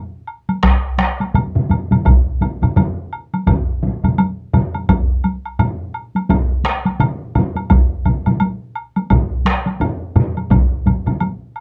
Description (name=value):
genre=japanese traditional, taiko drum ensemble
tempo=85 BPM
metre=4/4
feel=swing 60% on 16ths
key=none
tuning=none
part: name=woodblock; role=percussion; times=0.3-11.6 s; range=none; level=-28 LUFS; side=equal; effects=none
part: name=taiko ensemble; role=percussion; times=0.5-11.4 s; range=none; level=-21 LUFS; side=equal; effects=none
part: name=taiko ensemble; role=percussion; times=0.6-11.2 s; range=none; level=-23 LUFS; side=equal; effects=none
part: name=taiko ensemble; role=percussion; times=0.6-11.2 s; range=none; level=-23 LUFS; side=equal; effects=none
part: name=taiko ensemble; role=percussion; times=0.6-10.7 s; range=none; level=-19 LUFS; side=equal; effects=none
room=moderate booth ambience, RT60 0.2 s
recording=dry, close 1970s-style studio recording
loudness=-17 LUFS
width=mono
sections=0.0-11.6 A section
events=none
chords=none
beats=| 0.64 1.35 2.06 2.77 | 3.47 4.18 4.89 5.59 | 6.30 7.00 7.71 8.41 | 9.11 9.81 10.51 11.21